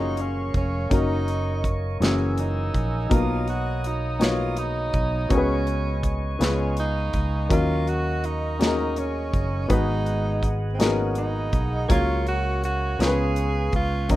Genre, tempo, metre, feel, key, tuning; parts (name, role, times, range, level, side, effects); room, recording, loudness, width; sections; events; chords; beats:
slow gospel; 55 BPM (dotted quarters); 6/8; straight; F# major; A4 = 439 Hz
clear tenor saxophone; melody; 0.0-14.2 s; B#3 to G#4; -30 LUFS; right 2 dB; plate reverb
warm baby grand piano; accompaniment; 0.0-14.2 s; G#2 to E#5; -27 LUFS; left 3 dB
percussive tonewheel organ; sustained chords; 0.0-14.2 s; G#4 to E6; -32 LUFS; right 2 dB; fast rotary speaker, plate reverb
fingered electric bass; bass; 0.0-14.2 s; E#1 to D#2; -26 LUFS; equal
modern studio drum kit; drums; 0.2-14.2 s; hi-hat, kick drum, snare drum; -25 LUFS; equal
moderate studio reverb, RT60 0.6 s; rough home demo mix; -21 LUFS; side -15 dB against mid
0.0-14.2 A section
0.0 F#maj7; 0.9 D#m7/F#; 2.0 F#9; 3.1 Bmaj7; 5.3 C#7sus4; 6.4 C#7; 7.5 D#m7; 9.7 G#m7; 11.9 F#/C#; 13.0 C#7
| 0.91 2.01 | 3.10 4.20 | 5.30 6.40 | 7.50 8.60 | 9.70 10.80 | 11.90 13.00 | 14.10